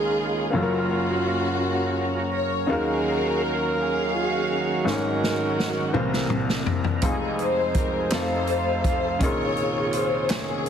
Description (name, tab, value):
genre	slow gospel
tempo	55 BPM (dotted quarters)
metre	6/8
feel	straight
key	unclear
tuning	A4 = 440 Hz
part	dark studio string section	melody	0.0-10.7 s	Bb3 to F5	-27 LUFS	left 2 dB	none
part	warm alto saxophone	melody	0.0-10.7 s	F4 to F5	-28 LUFS	right 3 dB	none
part	bright upright piano	accompaniment	0.0-10.7 s	F1 to C6	-28 LUFS	left 2 dB	none
part	overdriven tonewheel organ	sustained chords	0.0-10.7 s	C3 to F5	-29 LUFS	right 3 dB	slow rotary speaker, chorus vibrato
part	swinging big-band drum kit	drums	4.9-10.7 s	hi-hat, kick drum, snare drum, toms	-26 LUFS	equal	none
part	group handclap	percussion	8.1-10.6 s	none	-36 LUFS	equal	none
room	moderate echo chamber reverb, RT60 2.1 s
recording	heavily compressed radio sound, multiband compression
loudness	-21 LUFS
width	side -8 dB against mid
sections	0.0-10.7 A section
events	drum fill 4.9-7.0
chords	0.0 Db69; 0.5 Gbmaj7; 2.7 Ebm9; 4.9 Ab7sus4; 5.9 C7; 7.0 Fm7; 8.1 F7; 9.2 Bbm11